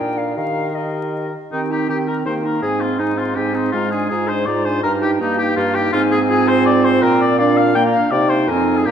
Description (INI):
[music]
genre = quick classical-period movement for wind quintet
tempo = 163 BPM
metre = 3/4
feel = straight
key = Eb major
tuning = A4 = 440 Hz
[part]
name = silver concert flute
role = melody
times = 0.0-8.9 s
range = Eb5 to C6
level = -26 LUFS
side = left 4 dB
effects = none
[part]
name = warm oboe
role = second line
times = 0.0-8.9 s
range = Eb4 to G5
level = -20 LUFS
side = left 4 dB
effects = none
[part]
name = mellow French horn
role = accompaniment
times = 0.0-8.9 s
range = C4 to G4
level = -24 LUFS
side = left 1 dB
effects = none
[part]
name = warm clarinet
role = accompaniment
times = 0.0-8.9 s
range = Ab3 to Eb5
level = -21 LUFS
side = right 7 dB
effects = none
[part]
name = warm bassoon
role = bass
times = 0.0-8.9 s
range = F2 to Eb3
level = -21 LUFS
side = right 1 dB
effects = none
[sound]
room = wet concert hall reverb, RT60 1.9 s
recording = dark, warm production, vinyl crackle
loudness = -15 LUFS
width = side -8 dB against mid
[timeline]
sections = 0.0-1.5 A section; 1.5-8.9 B section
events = none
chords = 0.0 Bb; 0.4 Eb; 2.6 Ab; 3.7 Bb7/Ab; 4.8 Eb/G; 5.9 Fm7/Ab; 7.0 Bb; 8.1 Cm; 8.5 Fm7